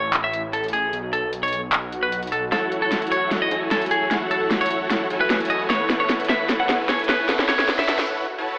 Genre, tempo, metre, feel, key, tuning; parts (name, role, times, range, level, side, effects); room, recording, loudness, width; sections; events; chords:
future bass; 151 BPM; 4/4; half-time; A4 = 440 Hz
clean electric guitar; melody; 0.0-8.0 s; G#4 to F#5; -22 LUFS; equal; tape echo
wide detuned saw bass; bass; 0.0-2.5 s; A1 to B1; -30 LUFS; equal; chorus, tube saturation
dubstep drum kit; drums; 0.1-8.1 s; handclaps, hi-hat, snare drum; -23 LUFS; equal; small room ambience
swell and riser; sound effects; 1.9-8.6 s; -36 LUFS; equal
dense compressed supersaw; riff; 2.5-8.6 s; E4 to A5; -24 LUFS; equal; low-pass filter
moderate lush hall reverb, RT60 2.2 s; high-pass filter, AM radio sound; -19 LUFS; side -29 dB against mid
0.0-2.5 A section; 2.5-8.6 B section
filter sweep on drum 0.0-2.5; swell 1.9-2.5, 8.1-8.6; build-up 2.5-8.6; drum fill 2.5-8.1; break 8.1-8.6
0.0 Amaj7(no3); 0.9 N.C.; 2.5 F#m7; 5.7 B9sus4